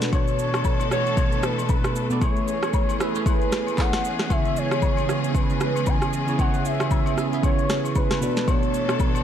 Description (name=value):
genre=amapiano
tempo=115 BPM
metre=4/4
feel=swing 58% on 16ths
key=unclear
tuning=A4 = 440 Hz
part: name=warm velvety synth lead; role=melody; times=0.0-9.2 s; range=B4 to G#5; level=-28 LUFS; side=left 1 dB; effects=chorus, digital delay
part: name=bell-like tine electric piano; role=accompaniment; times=0.0-9.2 s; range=B2 to E5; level=-26 LUFS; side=right 4 dB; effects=phaser
part: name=clear studio string section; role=sustained chords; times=0.0-9.2 s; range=B2 to A4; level=-30 LUFS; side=left 2 dB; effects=sidechain pumping
part: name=afro-pop drum kit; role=drums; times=0.0-9.2 s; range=handclaps, kick drum, rim click, shaker, snare drum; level=-24 LUFS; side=equal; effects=none
part: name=agogo bells and woodblock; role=percussion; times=0.1-9.2 s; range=none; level=-34 LUFS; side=left 10 dB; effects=none
room=light reverb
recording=dark, warm production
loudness=-20 LUFS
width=side -9 dB against mid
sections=0.0-9.2 A section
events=none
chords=0.0 E7sus4/B; 2.2 Amaj9; 4.3 C#m7; 8.2 E7sus4/B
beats=| 0.13 0.65 1.17 1.70 | 2.22 2.74 3.26 3.78 | 4.30 4.83 5.35 5.87 | 6.39 6.91 7.43 7.96 | 8.48 9.00